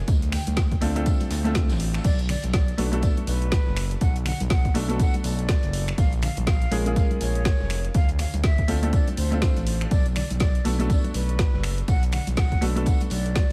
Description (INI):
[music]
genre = deep house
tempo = 122 BPM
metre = 4/4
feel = swing 59% on 16ths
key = B minor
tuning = A4 = 440 Hz
[part]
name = glassy wavetable pluck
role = melody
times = 0.0-0.7 s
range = G5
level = -45 LUFS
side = equal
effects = chorus, cassette tape, diffuse ambient delay
[part]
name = felt-muted upright piano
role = stabs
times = 0.0-13.5 s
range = G#3 to A4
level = -32 LUFS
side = equal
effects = diffuse ambient delay
[part]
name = smooth gliding synth bass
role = bass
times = 0.1-13.5 s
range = E#1 to D2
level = -28 LUFS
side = equal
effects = sidechain pumping
[part]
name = compact cocktail drum kit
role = drums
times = 0.1-13.5 s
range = hi-hat, snare drum, tambourine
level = -46 LUFS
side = equal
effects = sidechain pumping on hats, high-pass filter on hats, high-pass filter on snare, sidechain pumping on perc, high-pass filter on perc, high-pass filter on room
[part]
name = deep house drum kit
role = drums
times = 0.1-13.5 s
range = crash cymbal, finger snaps, hi-hat, snare drum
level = -35 LUFS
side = equal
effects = none
[part]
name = electronic kick drum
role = drums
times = 0.1-13.5 s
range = none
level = -24 LUFS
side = equal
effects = none
[part]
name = congas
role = percussion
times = 0.3-13.1 s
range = none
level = -38 LUFS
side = equal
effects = none
[part]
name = breathy jazz flute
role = melody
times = 2.0-13.5 s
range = B4 to F#5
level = -38 LUFS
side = equal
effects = vintage 12-bit sampler grit, diffuse ambient delay
[sound]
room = small room ambience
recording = vinyl crackle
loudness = -23 LUFS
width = mono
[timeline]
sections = 0.0-13.5 A section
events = none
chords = 0.1 Dm7; 2.0 Bm7; 6.0 A#m7; 7.9 Dm7; 9.9 Bm7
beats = | 0.08 0.57 1.06 1.55 | 2.04 2.54 3.03 3.52 | 4.01 4.50 5.00 5.49 | 5.98 6.47 6.96 7.46 | 7.95 8.44 8.93 9.42 | 9.91 10.41 10.90 11.39 | 11.88 12.37 12.87 13.36